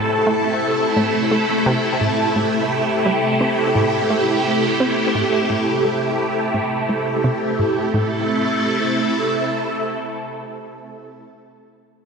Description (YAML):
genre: ambient, sequencer-driven space music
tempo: 86 BPM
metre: 4/4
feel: straight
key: A minor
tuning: A4 = 437 Hz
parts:
  - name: phased string machine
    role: sustained chords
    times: 0.0-11.0 s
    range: C3 to A4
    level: -18 LUFS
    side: right 1 dB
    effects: ensemble chorus, phaser
  - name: concert harp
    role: arpeggios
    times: 0.0-11.3 s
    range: A3 to E4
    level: -27 LUFS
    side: left 6 dB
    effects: auto-pan, ping-pong delay
  - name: analog pluck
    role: riff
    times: 0.0-8.3 s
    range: A2 to C4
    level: -24 LUFS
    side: right 1 dB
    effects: chorus, cassette tape, ping-pong delay
room: wet lush hall reverb, RT60 2.6 s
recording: none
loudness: -17 LUFS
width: side -5 dB against mid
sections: 0.0-7.9 A section; 7.9-10.7 B section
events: fade-out on harp 0.0-7.9; filter sweep on synth arpeggio sound 0.0-7.9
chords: 0.0 Am